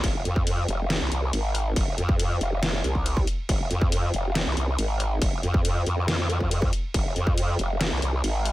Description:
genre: heavy wobble dubstep.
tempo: 139 BPM.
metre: 4/4.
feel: half-time.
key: F minor.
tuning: A4 = 440 Hz.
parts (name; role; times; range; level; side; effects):
growl bass; bass; 0.0-8.5 s; F1 to F2; -25 LUFS; equal; chorus, overdrive.
dubstep drum kit; drums; 0.0-8.5 s; crash cymbal, hi-hat, snare drum; -30 LUFS; equal; none.
electronic kick drum; drums; 0.0-7.4 s; none; -25 LUFS; equal; distortion.
room: little or no reverb.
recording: none.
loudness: -22 LUFS.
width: side -16 dB against mid.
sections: 0.0-8.5 A section.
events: none.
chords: none.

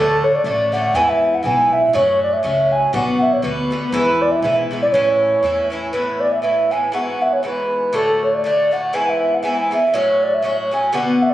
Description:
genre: celtic folk, Celtic polka.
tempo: 120 BPM.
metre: 2/4.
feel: swing 57% on 8ths.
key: A major.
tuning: A4 = 440 Hz.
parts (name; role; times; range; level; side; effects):
mellow baroque flute; melody; 0.0-11.3 s; A4 to G#5; -16 LUFS; right 1 dB; none.
Irish bouzouki; accompaniment; 0.0-11.3 s; G#2 to F#4; -21 LUFS; left 1 dB; none.
upright bass; bass; 0.0-5.8 s; A1 to F#2; -28 LUFS; equal; none.
room: moderate studio ambience, RT60 0.5 s.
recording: recorded on a phone in the room, club reverb.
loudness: -15 LUFS.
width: side -13 dB against mid.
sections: 0.0-5.9 A section; 5.9-11.3 A section.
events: none.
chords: 0.0 D; 0.9 E; 1.9 F#m; 2.9 Bm; 3.9 E; 4.9 A; 5.9 Asus2; 6.9 Eadd9; 7.9 D; 8.9 E; 9.9 F#m.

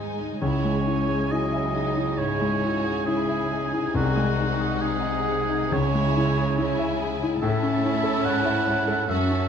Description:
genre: classical, romantic movement for piano and orchestra.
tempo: 64-73 BPM.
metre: 4/4.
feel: rubato.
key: C# minor.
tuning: A4 = 440 Hz.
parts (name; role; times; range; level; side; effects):
dark studio violin section; melody; 0.0-9.5 s; F#5 to A5; -36 LUFS; left 4 dB; none.
warm grand piano; melody; 0.0-9.5 s; B#1 to E5; -24 LUFS; left 2 dB; none.
rich studio violin section; second line; 0.0-9.5 s; C#4 to F#4; -33 LUFS; left 2 dB; none.
rich studio viola section; accompaniment; 0.0-9.5 s; F#3 to C#4; -33 LUFS; right 3 dB; none.
rich studio cello section; bass; 0.0-9.5 s; F#2 to C#3; -31 LUFS; right 4 dB; none.
warm oboe; second line; 0.4-9.5 s; F#4 to F#5; -28 LUFS; right 2 dB; none.
room: wet recital hall reverb, RT60 1.6 s.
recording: dark, warm production.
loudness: -22 LUFS.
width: side -7 dB against mid.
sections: 0.0-9.5 A section.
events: none.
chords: 0.4 C#m; 4.0 G#7/B#; 5.7 C#m; 7.4 A.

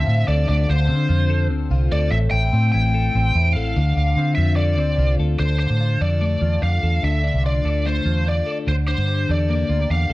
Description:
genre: jangly indie pop.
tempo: 146 BPM.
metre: 4/4.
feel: straight.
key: D minor.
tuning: A4 = 440 Hz.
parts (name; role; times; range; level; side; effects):
bluesy overdriven lead guitar; melody; 0.0-10.1 s; C5 to G5; -24 LUFS; equal; distortion.
twelve-string electric guitar; arpeggios; 0.0-10.1 s; A2 to A4; -25 LUFS; left 4 dB; phaser.
vintage muted fingered electric bass; bass; 0.0-10.1 s; A1 to D3; -19 LUFS; equal; none.
room: little or no reverb.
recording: dark, warm production.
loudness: -17 LUFS.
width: side -18 dB against mid.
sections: 0.0-5.4 A section; 5.4-10.1 B section.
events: none.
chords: 0.0 Dm7; 2.1 Am7; 3.8 Dm7; 5.4 Dm; 8.7 Gmadd9/D.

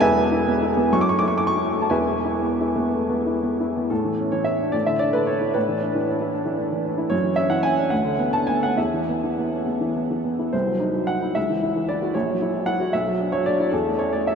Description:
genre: classical, romantic character piece for solo piano.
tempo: 58-78 BPM (dotted quarters).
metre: 6/8.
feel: rubato.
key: unclear.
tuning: A4 = 437 Hz.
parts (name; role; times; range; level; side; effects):
warm upright piano; solo; 0.0-14.3 s; E1 to D6; -20 LUFS; equal; none.
room: wet huge ambient reverb, RT60 8.5 s.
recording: in a vast, echoing space.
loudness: -20 LUFS.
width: side -6 dB against mid.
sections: 0.0-3.9 A section; 3.9-14.3 B section.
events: none.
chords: 0.0 E; 0.9 F#m7; 1.9 E; 3.9 A; 4.7 D5/A; 7.1 F#5; 7.9 Bm/D; 8.8 E5; 10.5 Cdim; 11.4 C#m; 12.1 F#7/A#; 12.9 Bm; 13.7 A/E.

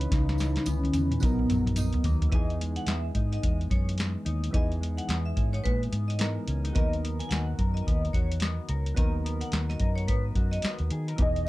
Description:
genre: indie pop, bedroom pop.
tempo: 108 BPM.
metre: 4/4.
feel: swing 60% on 16ths.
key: unclear.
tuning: A4 = 439 Hz.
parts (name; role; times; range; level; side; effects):
warbly nostalgic lead; melody; 0.0-2.1, 11.2-11.5 s; B3 to D#5; -30 LUFS; equal; ensemble chorus, analog delay.
mellow electric guitar; accompaniment; 0.0-11.5 s; C#3 to A#4; -37 LUFS; left 4 dB; lush chorus, warbly pitch drift.
soft electric-piano-like synth keys; accompaniment; 0.0-11.5 s; E3 to B4; -38 LUFS; right 2 dB; chorus.
vintage muted fingered electric bass; bass; 0.0-11.5 s; E1 to D#3; -29 LUFS; equal; none.
soft vintage rhythm box; drums; 0.0-11.5 s; hi-hat, kick drum, snare drum, toms; -28 LUFS; equal; none.
tambourine; percussion; 0.1-2.2, 11.5 s; none; -47 LUFS; right 7 dB; none.
vibraphone with hard mallets; second line; 2.3-10.6 s; B4 to G#5; -38 LUFS; equal; analog chorus, analog delay.
room: light reverb.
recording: dark, warm production.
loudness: -25 LUFS.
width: side -18 dB against mid.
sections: 0.0-2.3 A section; 2.3-11.2 B section.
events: drum fill 0.1-2.3.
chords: 0.0 C#m9; 1.2 Bmaj7; 2.3 Emaj7.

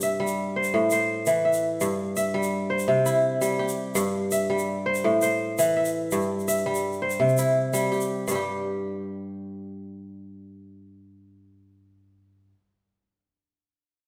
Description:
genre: west african traditional, West African string and xylophone music.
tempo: 111 BPM (dotted quarters).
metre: 12/8.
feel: straight.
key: unclear.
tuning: A4 = 440 Hz.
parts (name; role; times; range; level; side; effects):
kora; arpeggios; 0.0-12.6 s; G2 to E5; -26 LUFS; equal; none.
tube shaker; percussion; 0.0-8.4 s; none; -37 LUFS; equal; none.
room: wet recital hall reverb, RT60 1.7 s.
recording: none.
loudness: -25 LUFS.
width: mono.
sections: 0.0-8.3 A section; 8.3-12.6 B section.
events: none.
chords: 0.0 C/G; 0.7 Am; 1.8 C/G; 2.9 C; 4.0 C/G; 5.0 Am; 6.1 C/G; 7.2 C; 8.3 N.C..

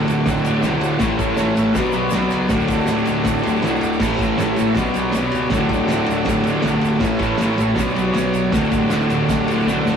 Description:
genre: garage rock duo or trio.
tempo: 160 BPM.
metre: 4/4.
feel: straight.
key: D major.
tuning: A4 = 444 Hz.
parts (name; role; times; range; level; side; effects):
combo organ; sustained chords; 0.0-10.0 s; E4 to D5; -27 LUFS; equal; none.
fuzz guitar; riff; 0.0-10.0 s; D2 to B3; -18 LUFS; equal; distortion.
fuzz picked electric bass; bass; 0.0-10.0 s; D1 to C#2; -29 LUFS; right 1 dB; overdrive.
cloth-damped thuddy drum kit; drums; 0.1-9.9 s; crash cymbal, kick drum, ride cymbal, snare drum; -23 LUFS; equal; none.
tube shaker; percussion; 0.1-10.0 s; none; -42 LUFS; left 4 dB; none.
room: moderate stone room reverb, RT60 1.1 s.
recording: rough rehearsal-room recording, lossy compression artefacts.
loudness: -16 LUFS.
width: side -7 dB against mid.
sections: 0.0-10.0 A section.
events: drum fill 9.7.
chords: 0.0 D; 1.0 A; 1.8 Bm; 2.5 D; 4.0 A; 4.8 Bm; 5.5 D; 7.0 A; 7.8 Bm; 8.5 D.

